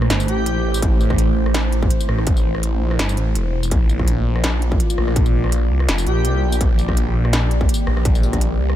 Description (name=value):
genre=half-time drum and bass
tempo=166 BPM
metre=4/4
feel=swing 54% on 16ths, half-time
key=unclear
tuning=A4 = 439 Hz
part: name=deep dark ambient pad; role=sustained chords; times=0.0-8.8 s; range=A3 to D5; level=-25 LUFS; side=equal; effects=chorus, built-in reverb, sidechain pumping
part: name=phased detuned saw bass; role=bass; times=0.0-8.8 s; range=E1 to C2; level=-18 LUFS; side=equal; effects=phaser
part: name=industrial drum kit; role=drums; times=0.0-8.8 s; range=hi-hat, rim click, snare drum, tambourine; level=-26 LUFS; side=equal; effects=none
part: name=airy dreamy lead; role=melody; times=0.3-0.8, 6.1-6.6 s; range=G4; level=-29 LUFS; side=right 1 dB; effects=chorus, vintage 12-bit sampler grit, dub echo
part: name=electronic kick drum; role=drums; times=0.8-8.4 s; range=none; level=-18 LUFS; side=equal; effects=distortion
room=little or no reverb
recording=none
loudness=-16 LUFS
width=side -12 dB against mid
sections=0.0-8.8 A section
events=none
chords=0.0 Am; 3.7 Bb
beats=0.10 0.46 | 0.82 1.19 1.55 1.91 | 2.27 2.63 2.99 3.35 | 3.72 4.08 4.44 4.80 | 5.16 5.52 5.88 6.25 | 6.61 6.97 7.33 7.69 | 8.05 8.41